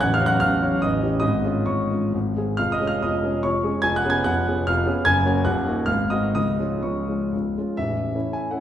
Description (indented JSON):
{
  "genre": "classical, romantic triple-time dance for piano with dotted rhythms",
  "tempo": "116-171 BPM",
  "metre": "3/4",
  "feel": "rubato",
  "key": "Db major",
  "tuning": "A4 = 440 Hz",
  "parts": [
    { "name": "warm concert grand piano", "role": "solo", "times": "0.0-8.6 s", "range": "A0 to Ab6", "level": "-20 LUFS", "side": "equal", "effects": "none" }
  ],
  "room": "wet recital hall reverb, RT60 1.6 s",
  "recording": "heard from further back in the room",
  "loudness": "-20 LUFS",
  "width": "side -10 dB against mid",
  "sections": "0.0-7.8 A section",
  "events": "none",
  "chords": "0.0 Gbm/A; 0.8 A7; 1.2 Db/Ab; 2.1 Ab; 2.6 Db/F; 3.8 Db7/F; 5.1 Gb; 5.5 Ebm; 5.9 Ab7b9; 6.3 Db; 7.8 A",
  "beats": "| 0.02 0.41 0.83 | 1.23 1.67 2.14 | 2.59 3.03 3.45 | 3.85 4.27 4.68 | 5.05 5.45 5.88 | 6.34 6.84 7.33 | 7.77 8.15 8.52"
}